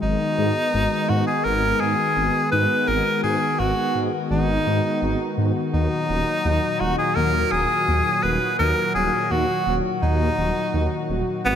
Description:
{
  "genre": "synthwave",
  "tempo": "84 BPM",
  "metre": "4/4",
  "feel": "straight",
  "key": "unclear",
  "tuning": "A4 = 440 Hz",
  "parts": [
    { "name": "breathy tenor saxophone", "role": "melody", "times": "0.0-11.6 s", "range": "B3 to B4", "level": "-22 LUFS", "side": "equal", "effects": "ping-pong delay" },
    { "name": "warm analog pad", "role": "sustained chords", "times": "0.0-11.6 s", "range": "A#2 to F#4", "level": "-25 LUFS", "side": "left 1 dB", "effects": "chorus" },
    { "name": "wide detuned saw bass", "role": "bass", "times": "0.0-11.6 s", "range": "D#1 to G#2", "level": "-24 LUFS", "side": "equal", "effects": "chorus" }
  ],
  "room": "moderate plate reverb, RT60 2.8 s",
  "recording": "bright 1980s-style digital production",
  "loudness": "-19 LUFS",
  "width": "side -8 dB against mid",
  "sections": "0.0-11.6 A section",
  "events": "none",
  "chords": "0.0 G#m7; 5.7 D#m"
}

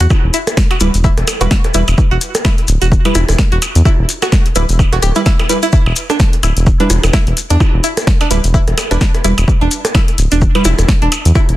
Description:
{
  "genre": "minimal techno",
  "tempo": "128 BPM",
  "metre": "4/4",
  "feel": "swing 57% on 16ths",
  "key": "E minor",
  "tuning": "A4 = 441 Hz",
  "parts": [
    { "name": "string-like resonator pluck", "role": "riff", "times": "0.0-11.4 s", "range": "D4 to G4", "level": "-20 LUFS", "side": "right 1 dB", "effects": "chorus, phaser, sidechain pumping, tape echo" },
    { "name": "round analog bass", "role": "bass", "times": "0.0-11.6 s", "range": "D1 to E2", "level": "-12 LUFS", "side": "equal", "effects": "sidechain pumping" },
    { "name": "punchy analog drum machine", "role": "drums", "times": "0.0-11.6 s", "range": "hi-hat, snare drum", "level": "-20 LUFS", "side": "left 1 dB", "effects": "overdrive" },
    { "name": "maracas", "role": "percussion", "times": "0.0-11.5 s", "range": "none", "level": "-23 LUFS", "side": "left 4 dB", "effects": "none" },
    { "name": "electronic kick drum", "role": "drums", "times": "0.1-11.5 s", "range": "none", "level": "-12 LUFS", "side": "equal", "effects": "overdrive" },
    { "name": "percussion blips", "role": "percussion", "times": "0.1-11.5 s", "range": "none", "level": "-20 LUFS", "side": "right 2 dB", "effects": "overdrive, dub echo" },
    { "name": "wavetable chord stab", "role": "stabs", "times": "0.8-10.6 s", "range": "G3 to B4", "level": "-19 LUFS", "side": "right 2 dB", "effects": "dub echo" }
  ],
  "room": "light reverb",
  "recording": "dense, heavily limited modern master",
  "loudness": "-10 LUFS",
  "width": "side -15 dB against mid",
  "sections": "0.0-11.6 A section",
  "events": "none",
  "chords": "none"
}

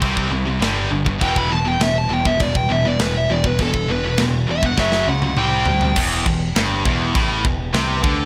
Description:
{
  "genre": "heavy metal",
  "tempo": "101 BPM",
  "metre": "4/4",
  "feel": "straight",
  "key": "E minor",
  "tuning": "A4 = 436 Hz",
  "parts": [
    { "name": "scooped high-gain guitar", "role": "riff", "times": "0.0-8.3 s", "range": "E2 to C4", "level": "-26 LUFS", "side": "equal", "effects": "distortion" },
    { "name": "tight distorted guitar", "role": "riff", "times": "0.0-8.3 s", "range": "E2 to C4", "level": "-26 LUFS", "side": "equal", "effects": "distortion" },
    { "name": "growling picked electric bass", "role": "bass", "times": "0.0-8.3 s", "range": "E1 to D2", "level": "-26 LUFS", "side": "equal", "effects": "overdrive" },
    { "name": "tight metal drum kit", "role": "drums", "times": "0.0-8.2 s", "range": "crash cymbal, kick drum, snare drum, toms", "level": "-25 LUFS", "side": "equal", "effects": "none" },
    { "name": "high-gain lead guitar", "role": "melody", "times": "1.2-6.0 s", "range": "A4 to B5", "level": "-24 LUFS", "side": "equal", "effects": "distortion, digital delay" },
    { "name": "dark chamber string section", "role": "sustained chords", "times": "1.2-8.3 s", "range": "C3 to C#5", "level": "-34 LUFS", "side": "equal", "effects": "none" }
  ],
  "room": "light reverb",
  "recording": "none",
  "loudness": "-19 LUFS",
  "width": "mono",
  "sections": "0.0-6.0 A section; 6.0-8.3 B section",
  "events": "lead electric guitar solo 0.0-6.0; drum fill 4.8-6.0",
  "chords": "0.0 C5; 0.6 G5; 1.2 Em; 4.8 F#5; 5.4 C5; 6.0 Em"
}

